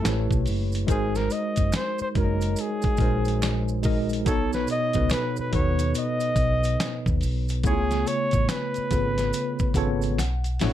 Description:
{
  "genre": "R&B, neo-soul",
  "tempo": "71 BPM",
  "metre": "4/4",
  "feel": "swing 62% on 16ths",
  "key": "unclear",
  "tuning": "A4 = 440 Hz",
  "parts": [
    { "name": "clear flugelhorn", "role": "melody", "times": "0.0-10.7 s", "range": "F#4 to D#5", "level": "-28 LUFS", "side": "equal", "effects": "plate reverb" },
    { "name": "tine electric piano", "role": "accompaniment", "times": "0.0-10.7 s", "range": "B2 to A5", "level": "-27 LUFS", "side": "equal", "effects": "medium stereo tremolo" },
    { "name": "hollow-body short-scale fingered electric bass", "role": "bass", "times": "0.1-10.7 s", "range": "F#1 to D#2", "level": "-26 LUFS", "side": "equal", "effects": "none" },
    { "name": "dusty soul sampler-style drum kit", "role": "drums", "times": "0.1-10.7 s", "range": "hi-hat, kick drum, snare drum", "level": "-27 LUFS", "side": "equal", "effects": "none" },
    { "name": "finger snaps and maracas", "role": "percussion", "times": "0.1-10.7 s", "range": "none", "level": "-40 LUFS", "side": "right 7 dB", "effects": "none" }
  ],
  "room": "light reverb",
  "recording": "dark, warm production",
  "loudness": "-22 LUFS",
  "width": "side -12 dB against mid",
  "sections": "0.0-10.7 A section",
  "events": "tine electric piano fill 9.3-10.7; drum fill 10.2-10.7",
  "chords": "0.0 A9; 0.9 G#7; 4.3 B9; 7.6 C#7b13; 10.2 Bm11",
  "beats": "0.04 | 0.88 1.73 2.57 3.42 | 4.26 5.11 5.95 6.80 | 7.64 8.49 9.33 10.18"
}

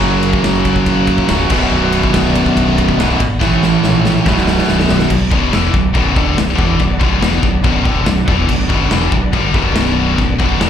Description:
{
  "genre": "heavy metal",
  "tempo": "142 BPM",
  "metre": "4/4",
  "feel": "straight",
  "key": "B minor",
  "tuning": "A4 = 442 Hz",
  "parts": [
    { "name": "rich symphonic string section", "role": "sustained chords", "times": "0.0-10.7 s", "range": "A3 to D5", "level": "-25 LUFS", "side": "left 1 dB", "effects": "none" },
    { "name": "biting overdriven guitar", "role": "riff", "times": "0.0-10.7 s", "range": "B1 to A3", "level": "-17 LUFS", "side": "right 1 dB", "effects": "none" },
    { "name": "heavy high-gain guitar", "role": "riff", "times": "0.0-10.7 s", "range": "B1 to A3", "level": "-19 LUFS", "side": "left 12 dB", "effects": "distortion" },
    { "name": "high-gain distorted guitar", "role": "riff", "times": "0.0-5.1 s", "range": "B1 to A3", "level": "-18 LUFS", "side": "right 9 dB", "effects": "distortion" },
    { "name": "growling fingered electric bass", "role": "bass", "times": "0.0-10.7 s", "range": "B0 to A#1", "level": "-18 LUFS", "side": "equal", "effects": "overdrive" },
    { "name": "big rock drum kit", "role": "drums", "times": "0.2-10.7 s", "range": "china cymbal, crash cymbal, kick drum, ride cymbal, snare drum", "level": "-17 LUFS", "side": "equal", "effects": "none" }
  ],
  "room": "little or no reverb",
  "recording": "live gig heard through the venue's PA, club reverb",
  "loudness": "-11 LUFS",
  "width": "side -9 dB against mid",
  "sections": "0.0-5.1 A section; 5.1-10.7 B section",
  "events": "drum fill 3.4-5.1",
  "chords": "0.0 F#; 1.5 Bm; 3.4 A; 4.3 Bm",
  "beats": "| 0.01 0.44 0.86 1.29 | 1.71 2.14 2.56 2.98 | 3.41 3.83 4.26 4.68 | 5.10 5.53 5.95 6.37 | 6.80 7.22 7.64 8.07 | 8.49 8.92 9.34 9.76 | 10.19 10.61"
}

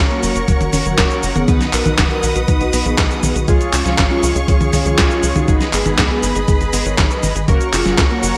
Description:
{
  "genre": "italo disco",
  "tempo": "120 BPM",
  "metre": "4/4",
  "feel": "straight",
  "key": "F# major",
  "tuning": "A4 = 440 Hz",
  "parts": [
    { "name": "mellow synth brass", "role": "melody", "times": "0.0-8.4 s", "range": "A#3 to D#5", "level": "-24 LUFS", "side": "equal", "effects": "chorus, delay" },
    { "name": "dark studio string section", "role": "sustained chords", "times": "0.0-8.4 s", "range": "G#4 to D#6", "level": "-26 LUFS", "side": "equal", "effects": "none" },
    { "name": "unison pluck", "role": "arpeggios", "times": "0.0-8.3 s", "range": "D#3 to A#4", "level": "-29 LUFS", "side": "equal", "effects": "none" },
    { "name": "chorused polysynth", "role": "stabs", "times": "0.0-8.4 s", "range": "G#3 to B4", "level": "-28 LUFS", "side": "equal", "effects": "none" },
    { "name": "tight sequencer bass", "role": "bass", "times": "0.0-8.3 s", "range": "F#1 to D#2", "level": "-23 LUFS", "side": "equal", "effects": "tube saturation" },
    { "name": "dusty soul sampler-style drum kit", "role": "drums", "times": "0.1-8.3 s", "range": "cabasa, handclaps, hi-hat, snare drum, toms", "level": "-21 LUFS", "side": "equal", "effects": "gated reverb" },
    { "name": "electronic kick drum", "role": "drums", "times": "0.5-8.1 s", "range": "none", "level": "-19 LUFS", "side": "equal", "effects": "none" }
  ],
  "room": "moderate plate reverb, RT60 1.6 s",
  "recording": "bright 1980s-style digital production",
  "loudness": "-15 LUFS",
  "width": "mono",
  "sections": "0.0-8.4 A section",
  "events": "none",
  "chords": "0.0 F#; 1.5 B; 3.5 C#; 5.5 G#m; 7.5 F#",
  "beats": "0.48 0.98 | 1.48 1.98 2.48 2.98 | 3.48 3.98 4.48 4.98 | 5.48 5.98 6.48 6.98 | 7.48 7.98"
}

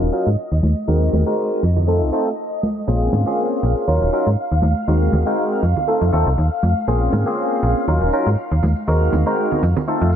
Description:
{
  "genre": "filtered disco house",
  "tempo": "120 BPM",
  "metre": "4/4",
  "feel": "swing 55% on 16ths",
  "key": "Bb minor",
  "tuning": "A4 = 442 Hz",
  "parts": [
    { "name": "barky tine electric piano", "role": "accompaniment", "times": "0.0-10.1 s", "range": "Gb3 to Bb4", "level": "-20 LUFS", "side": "equal", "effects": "phaser, low-pass filter" },
    { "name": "phased string machine", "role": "sustained chords", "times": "0.0-10.2 s", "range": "Eb5 to F5", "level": "-27 LUFS", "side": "equal", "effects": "ensemble chorus, phaser, vintage 12-bit sampler grit, low-pass filter" },
    { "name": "slap-like FM bass", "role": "bass", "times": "0.0-10.2 s", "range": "Eb1 to Ab2", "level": "-17 LUFS", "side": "equal", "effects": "low-pass filter" },
    { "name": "tambourine and congas", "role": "percussion", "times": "0.1-10.2 s", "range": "none", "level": "-25 LUFS", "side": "right 2 dB", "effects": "low-pass filter on perc" }
  ],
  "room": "light reverb",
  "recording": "none",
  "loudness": "-16 LUFS",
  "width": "side -9 dB against mid",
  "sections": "0.0-10.2 A section",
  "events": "filter sweep 0.0-10.2",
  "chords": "0.0 Ebm7; 0.6 Ab7/Eb; 1.6 F7; 2.9 Bbm7; 3.9 Ebm7; 4.6 Ab7/Eb; 5.6 F7; 6.9 Bbm7; 7.9 Ebm7; 8.6 Ab7/Eb; 9.6 F7",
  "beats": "0.38 | 0.88 1.38 1.88 2.38 | 2.88 3.38 3.88 4.38 | 4.88 5.38 5.88 6.38 | 6.88 7.38 7.88 8.38 | 8.88 9.38 9.88"
}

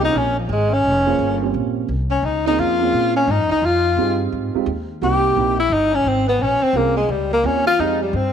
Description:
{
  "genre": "jazz, small-group swing and bop",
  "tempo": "173 BPM",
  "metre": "4/4",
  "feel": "swing 63% on 8ths",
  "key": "unclear",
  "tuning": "A4 = 440 Hz",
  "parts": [
    { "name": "breathy tenor saxophone", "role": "melody", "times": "0.0-8.3 s", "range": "F3 to G4", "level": "-18 LUFS", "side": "left 3 dB", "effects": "none" },
    { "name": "clear alto saxophone", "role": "second line", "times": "0.0-8.3 s", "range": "F3 to G4", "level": "-26 LUFS", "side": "right 10 dB", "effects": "none" },
    { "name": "dark upright piano", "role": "accompaniment", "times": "0.0-8.0 s", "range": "Ab3 to C5", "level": "-24 LUFS", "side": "right 12 dB", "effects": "none" },
    { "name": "upright bass", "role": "bass", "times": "0.0-8.3 s", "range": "F1 to Bb2", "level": "-24 LUFS", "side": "equal", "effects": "none" }
  ],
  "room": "moderate echo chamber reverb, RT60 2.0 s",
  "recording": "1960s-style stereo",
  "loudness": "-16 LUFS",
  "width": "side -8 dB against mid",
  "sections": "0.0-8.3 A section",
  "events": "none",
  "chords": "0.0 Bbm9; 3.6 Fm9; 5.0 C7#9; 6.4 Bbm9; 7.8 Fm9",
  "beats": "0.14 0.49 | 0.84 1.19 1.54 1.89 | 2.23 2.58 2.93 3.28 | 3.62 3.97 4.32 4.67 | 5.01 5.36 5.71 6.05 | 6.40 6.75 7.09 7.44 | 7.79 8.13"
}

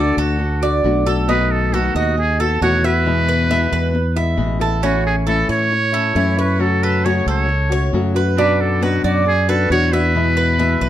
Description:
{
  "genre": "latin",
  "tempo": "135 BPM",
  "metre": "4/4",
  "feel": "straight",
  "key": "unclear",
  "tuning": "A4 = 441 Hz",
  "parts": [
    { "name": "trumpet with metal mute", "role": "melody", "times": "0.0-10.9 s", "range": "F#4 to C#5", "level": "-20 LUFS", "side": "right 2 dB", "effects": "plate reverb" },
    { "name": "nylon-string guitar", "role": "accompaniment", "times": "0.0-10.9 s", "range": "B2 to F#4", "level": "-21 LUFS", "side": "left 5 dB", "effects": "none" },
    { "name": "Cuban tres", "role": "arpeggios", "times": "0.0-10.9 s", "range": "C#4 to E5", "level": "-22 LUFS", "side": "right 4 dB", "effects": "none" },
    { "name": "modern bright fingered electric bass", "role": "bass", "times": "0.0-10.9 s", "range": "A1 to A2", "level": "-19 LUFS", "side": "equal", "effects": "none" }
  ],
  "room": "moderate studio reverb, RT60 0.6 s",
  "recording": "dark, warm production",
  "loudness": "-14 LUFS",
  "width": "side -12 dB against mid",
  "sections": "0.0-10.9 A section",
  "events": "none",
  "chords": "0.0 D; 1.3 B7; 3.1 E; 4.8 A; 6.6 F#m; 8.4 Bm/F#; 10.1 E",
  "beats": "0.40 0.84 | 1.28 1.73 2.17 2.62 | 3.06 3.50 3.94 4.39 | 4.83 5.27 5.72 6.16 | 6.60 7.04 7.49 7.93 | 8.37 8.82 9.26 9.70 | 10.15 10.59"
}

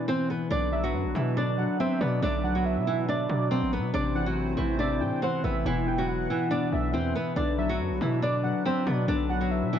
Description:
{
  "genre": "hip hop",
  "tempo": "140 BPM",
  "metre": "4/4",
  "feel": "half-time",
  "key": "unclear",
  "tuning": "A4 = 440 Hz",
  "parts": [
    { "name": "flamenco guitar", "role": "melody", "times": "0.0-9.8 s", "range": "E3 to D5", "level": "-29 LUFS", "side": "right 2 dB", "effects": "low-pass filter, digital delay" },
    { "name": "dark grand piano", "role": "accompaniment", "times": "0.0-9.8 s", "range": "B2 to F#3", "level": "-31 LUFS", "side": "left 6 dB", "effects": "low-pass filter" },
    { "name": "hollow soft pad", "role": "sustained chords", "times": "0.0-9.8 s", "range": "E3 to C5", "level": "-35 LUFS", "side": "right 1 dB", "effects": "chorus" },
    { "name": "distorted 808-style bass", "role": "bass", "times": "0.5-9.8 s", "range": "E1 to B2", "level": "-30 LUFS", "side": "equal", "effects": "distortion" },
    { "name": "warm velvety synth lead", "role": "second line", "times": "0.7-9.8 s", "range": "D5 to G5", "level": "-34 LUFS", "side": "right 3 dB", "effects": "chorus, digital delay" }
  ],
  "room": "light reverb",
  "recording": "none",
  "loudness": "-24 LUFS",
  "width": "side -9 dB against mid",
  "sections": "0.5-9.8 A section",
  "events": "break 0.0-0.5",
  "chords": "0.0 E5; 0.5 Am; 5.7 E5; 7.4 N.C.",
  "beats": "0.08 | 0.51 0.94 1.37 1.80 | 2.22 2.65 3.08 3.51 | 3.94 4.37 4.80 5.22 | 5.65 6.08 6.51 6.94 | 7.37 7.80 8.22 8.65 | 9.08 9.51"
}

